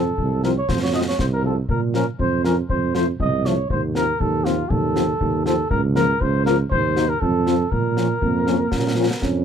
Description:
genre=military-style march for wind band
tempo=120 BPM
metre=2/4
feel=straight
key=Bb minor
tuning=A4 = 440 Hz
part: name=mellow cornet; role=melody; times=0.0-9.4 s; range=F4 to Eb5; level=-24 LUFS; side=right 1 dB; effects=none
part: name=warm French horn section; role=accompaniment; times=0.0-9.1 s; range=F3 to Gb4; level=-22 LUFS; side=left 6 dB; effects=none
part: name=warm tuba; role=bass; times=0.0-9.4 s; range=C2 to Bb2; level=-22 LUFS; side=right 3 dB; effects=none
part: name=concert bass drum and concert snare drum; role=drums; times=0.2-9.4 s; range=none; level=-26 LUFS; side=left 1 dB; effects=none
part: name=warm euphonium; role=second line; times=8.2-9.4 s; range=Bb3 to Db4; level=-25 LUFS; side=right 2 dB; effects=none
room=little or no reverb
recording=dark, warm production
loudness=-18 LUFS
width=side -8 dB against mid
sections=0.0-9.4 A section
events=none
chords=0.0 F; 1.7 Bbm; 2.7 F; 3.7 F7/Eb; 5.7 Bbm/Db; 6.7 Ebm; 7.2 F; 7.7 Bbm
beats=0.19 | 0.69 1.19 | 1.69 2.19 | 2.70 3.20 | 3.70 4.20 | 4.71 5.21 | 5.71 6.21 | 6.71 7.22 | 7.72 8.22 | 8.72 9.22

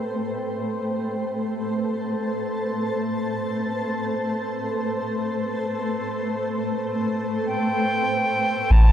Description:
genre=ambient dub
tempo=free time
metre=none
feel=none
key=A minor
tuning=A4 = 440 Hz
part: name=granular cloud pad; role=sustained chords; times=0.0-8.9 s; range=A3 to A5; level=-24 LUFS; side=equal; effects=built-in reverb
part: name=silver concert flute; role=melody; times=7.5-8.9 s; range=G5 to A5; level=-23 LUFS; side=right 1 dB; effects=dub echo
part: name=soft dub sub bass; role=bass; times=8.7-8.9 s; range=A1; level=-12 LUFS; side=equal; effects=none
room=moderate huge ambient reverb, RT60 4.8 s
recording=dark, warm production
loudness=-23 LUFS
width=side -10 dB against mid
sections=0.0-7.8 A section; 7.8-8.9 B section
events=filter sweep on ambient pad 0.0-7.8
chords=0.0 Am7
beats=free time

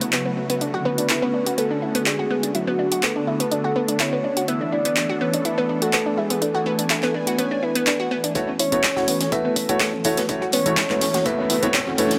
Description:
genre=progressive house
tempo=124 BPM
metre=4/4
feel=straight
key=unclear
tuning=A4 = 438 Hz
part: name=supersaw pad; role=sustained chords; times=0.0-12.2 s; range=C#3 to G#5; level=-30 LUFS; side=equal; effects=phaser, sidechain pumping, low-pass filter
part: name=analog pluck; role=arpeggios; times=0.0-12.2 s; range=B3 to F#4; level=-27 LUFS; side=equal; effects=chorus, sidechain pumping, tape echo
part: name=deep house drum kit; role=drums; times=0.0-12.2 s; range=handclaps, hi-hat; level=-26 LUFS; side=equal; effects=sidechain pumping on hats
part: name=soft octave-layered synth lead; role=melody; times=0.9-12.2 s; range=F#4 to E5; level=-27 LUFS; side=equal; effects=chorus, phaser, sidechain pumping, tape echo
part: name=tight funk drum kit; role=drums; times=8.3-12.2 s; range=hi-hat, snare drum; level=-35 LUFS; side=equal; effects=none
part: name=clear concert grand piano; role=stabs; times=8.4-12.1 s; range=A3 to E5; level=-27 LUFS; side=equal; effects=vintage 12-bit sampler grit, sidechain pumping, tape echo
part: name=electronic kick drum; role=drums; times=8.4-11.8 s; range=none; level=-33 LUFS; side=equal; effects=high-pass filter on kick
part: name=riser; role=sound effects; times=9.5-12.2 s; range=none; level=-34 LUFS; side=equal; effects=none
room=light reverb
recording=none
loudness=-22 LUFS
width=mono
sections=0.0-8.4 A section; 8.4-12.2 B section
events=filter sweep on synth pluck 0.0-8.4; build-up 8.4-12.2; riser 9.5-12.2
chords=0.0 F#m7; 0.6 Bm9; 4.5 E7sus4; 8.4 A6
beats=0.13 | 0.61 1.09 1.58 2.06 | 2.55 3.03 3.52 4.00 | 4.48 4.97 5.45 5.93 | 6.42 6.90 7.39 7.87 | 8.35 8.84 9.32 9.80 | 10.29 10.77 11.26 11.74

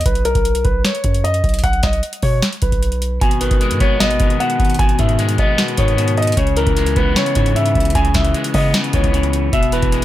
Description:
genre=hip hop, trap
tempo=152 BPM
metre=4/4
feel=half-time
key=G# minor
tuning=A4 = 440 Hz
part: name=long sustained 808-style bass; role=bass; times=0.0-10.0 s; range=E1 to C#3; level=-19 LUFS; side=equal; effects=none
part: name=booming analog drum machine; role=drums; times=0.0-10.0 s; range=hi-hat, kick drum, snare drum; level=-18 LUFS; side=equal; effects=none
part: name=dark concert grand piano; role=melody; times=0.1-10.0 s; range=A#4 to G#5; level=-20 LUFS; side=equal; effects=low-pass filter
part: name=electric guitar at the edge of break-up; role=accompaniment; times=3.2-10.0 s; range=B2 to B3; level=-19 LUFS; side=left 3 dB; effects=wide subtle chorus, low-pass filter
room=little or no reverb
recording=none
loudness=-14 LUFS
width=side -14 dB against mid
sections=0.0-10.0 A section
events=none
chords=0.1 N.C.; 3.2 G#m; 6.4 C#m7; 9.5 E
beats=| 0.06 0.45 0.85 1.24 | 1.64 2.03 2.42 2.82 | 3.21 3.61 4.00 4.40 | 4.79 5.19 5.58 5.98 | 6.37 6.77 7.16 7.56 | 7.95 8.35 8.74 9.14 | 9.53 9.93

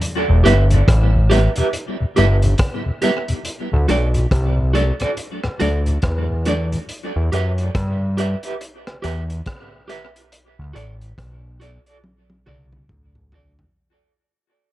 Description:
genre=dub reggae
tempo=70 BPM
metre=4/4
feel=swing 61% on 16ths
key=E minor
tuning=A4 = 435 Hz
part: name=crunchy breakbeat drum kit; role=drums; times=0.0-13.7 s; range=hi-hat, kick drum, rim click, toms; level=-24 LUFS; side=equal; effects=none
part: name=tonewheel organ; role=accompaniment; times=0.3-6.8 s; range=D2 to E4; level=-24 LUFS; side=left 2 dB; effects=chorus vibrato, slow rotary speaker, tape echo
part: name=fat analog bass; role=bass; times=0.3-13.6 s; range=E1 to G2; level=-17 LUFS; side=equal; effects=none
part: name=electric guitar at the edge of break-up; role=accompaniment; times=0.4-13.5 s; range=F#4 to E5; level=-22 LUFS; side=right 3 dB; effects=tremolo, tape echo
room=little or no reverb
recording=dark, warm production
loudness=-16 LUFS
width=side -15 dB against mid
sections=0.0-13.8 A section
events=fade-out 0.0-13.8; drum fill 12.0-13.8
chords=0.0 Em; 3.5 D; 6.9 Em; 10.3 D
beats=| 0.02 0.88 1.73 2.59 | 3.45 4.31 5.17 6.03 | 6.88 7.74 8.60 9.46 | 10.32 11.18 12.03 12.89

